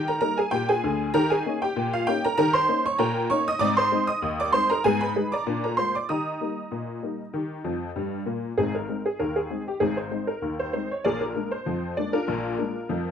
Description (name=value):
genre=ragtime piano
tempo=97 BPM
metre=2/4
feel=swing 54% on 16ths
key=Eb major, Ab major from 8.6 s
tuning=A4 = 439 Hz
part: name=honky-tonk upright piano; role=solo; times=0.0-13.1 s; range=Ab1 to Eb6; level=-23 LUFS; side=equal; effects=none
room=light reverb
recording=close, detailed microphones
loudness=-23 LUFS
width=side -8 dB against mid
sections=0.0-8.6 A section; 8.6-13.1 B section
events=honky-tonk piano fill 7.6-8.6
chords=0.0 Eb; 1.1 Eb7; 3.6 Ab; 4.8 Abm; 5.5 Bb7; 6.1 Eb; 8.6 Ab; 11.1 Bb7